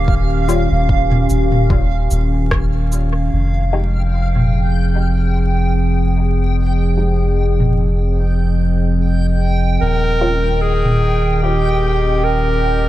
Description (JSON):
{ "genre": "ambient dub", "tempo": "74 BPM", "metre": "4/4", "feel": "swing 55% on 16ths", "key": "F minor", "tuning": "A4 = 437 Hz", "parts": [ { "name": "warbly tape-like pad", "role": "sustained chords", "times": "0.0-12.9 s", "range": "Eb3 to G5", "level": "-21 LUFS", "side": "equal", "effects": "chorus, built-in reverb" }, { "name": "soft dub sub bass", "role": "bass", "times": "0.0-12.9 s", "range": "Eb1 to F1", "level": "-16 LUFS", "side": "equal", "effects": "none" }, { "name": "backwards swelling texture", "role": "texture", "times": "0.0-12.9 s", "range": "F5 to G5", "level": "-26 LUFS", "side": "right 2 dB", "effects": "built-in reverb" }, { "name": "electronic kick drum", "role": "drums", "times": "0.1-2.7 s", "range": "none", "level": "-17 LUFS", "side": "equal", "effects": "overdrive" }, { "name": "filtered dub chord stab", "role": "stabs", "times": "0.5-10.5 s", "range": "G3 to G4", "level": "-27 LUFS", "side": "left 2 dB", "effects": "phaser, lush chorus, cassette tape, dub echo" }, { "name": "organic electronic drum kit", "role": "drums", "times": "0.5-11.0 s", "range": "cabasa, rim click, toms", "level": "-20 LUFS", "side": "equal", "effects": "low-pass filter on snare, low-pass filter on perc, low-pass filter on toms, low-pass filter on room" }, { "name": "bright clarinet", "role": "melody", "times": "9.8-12.9 s", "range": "G4 to Bb4", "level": "-18 LUFS", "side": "left 1 dB", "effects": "dub echo" } ], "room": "little or no reverb", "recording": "vinyl crackle", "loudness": "-14 LUFS", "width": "side -14 dB against mid", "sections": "0.0-3.3 A section; 3.3-12.9 B section", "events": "none", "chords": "0.0 Eb7; 3.3 Fm7; 9.8 Eb7", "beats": "| 0.08 0.89 1.70 2.52 | 3.33 4.14 4.95 5.76 | 6.57 7.38 8.19 9.00 | 9.81 10.62 11.43 12.24" }